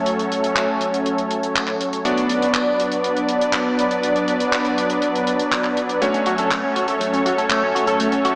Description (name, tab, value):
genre	italo disco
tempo	121 BPM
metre	4/4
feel	straight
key	B minor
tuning	A4 = 439 Hz
part	lush unison pad	sustained chords	0.0-8.4 s	F#3 to D5	-22 LUFS	equal	chorus
part	bright electric grand piano	stabs	0.0-8.4 s	A3 to D5	-29 LUFS	equal	none
part	damped 70s drum kit	drums	0.1-8.3 s	handclaps, hi-hat	-28 LUFS	equal	studio ambience
part	electric guitar with an envelope filter	arpeggios	6.0-8.3 s	A3 to A4	-25 LUFS	equal	subtle chorus, tape echo
room	moderate plate reverb, RT60 1.7 s, small room reverb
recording	small speaker sound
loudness	-20 LUFS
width	mono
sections	0.0-8.4 A section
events	none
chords	0.0 F#m; 2.0 Bm; 6.0 F#m